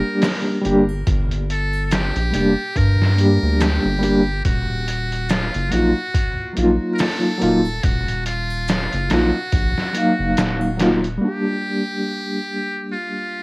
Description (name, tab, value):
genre	trip hop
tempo	71 BPM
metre	4/4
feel	swing 57% on 16ths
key	G minor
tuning	A4 = 440 Hz
part	trumpet with metal mute	melody	0.0-13.4 s	F4 to Bb4	-25 LUFS	equal	cassette tape, tape echo
part	reed electric piano	accompaniment	0.0-13.4 s	Gb3 to F5	-19 LUFS	equal	fast tremolo, vintage 12-bit sampler grit
part	round analog bass	bass	0.0-11.2 s	Eb1 to G2	-21 LUFS	equal	none
part	trip hop sampler-style drum kit	drums	0.2-11.2 s	hi-hat, kick drum, snare drum	-22 LUFS	equal	cassette tape
part	maracas and triangle	percussion	0.2-10.8 s	none	-46 LUFS	right 6 dB	none
room	digital ambience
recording	home recording on cassette, vinyl crackle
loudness	-17 LUFS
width	side -27 dB against mid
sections	0.0-11.2 A section; 11.2-13.4 B section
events	none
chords	0.0 Gm; 4.5 Ebmadd9; 11.2 Gm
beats	0.23 | 1.07 1.92 2.76 3.61 | 4.45 5.30 6.14 6.99 | 7.83 8.68 9.53 10.37 | 11.21 12.06 12.90